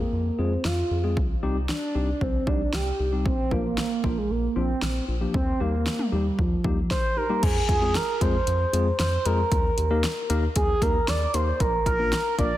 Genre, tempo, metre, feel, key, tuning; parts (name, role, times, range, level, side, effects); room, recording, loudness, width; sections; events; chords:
synth-pop; 115 BPM; 4/4; straight; F dorian; A4 = 439 Hz
expressive synth lead; melody; 0.0-12.6 s; F3 to D5; -26 LUFS; right 2 dB; chorus, tape echo
round analog bass; bass; 0.0-12.6 s; Bb1 to F2; -27 LUFS; equal
tine electric piano; accompaniment; 0.4-12.5 s; F3 to Bb4; -31 LUFS; left 4 dB; medium tremolo
deep house drum kit; drums; 0.6-12.5 s; crash cymbal, hi-hat, kick drum, snare drum, toms; -27 LUFS; equal; overdrive
light reverb; dense, heavily limited modern master; -22 LUFS; side -14 dB against mid
0.0-7.4 A section; 7.4-12.6 B section
0.0 Fm; 1.2 Cm; 3.3 Bbadd9; 5.3 Ebadd9; 7.4 Fm; 9.5 Eb; 11.6 Bb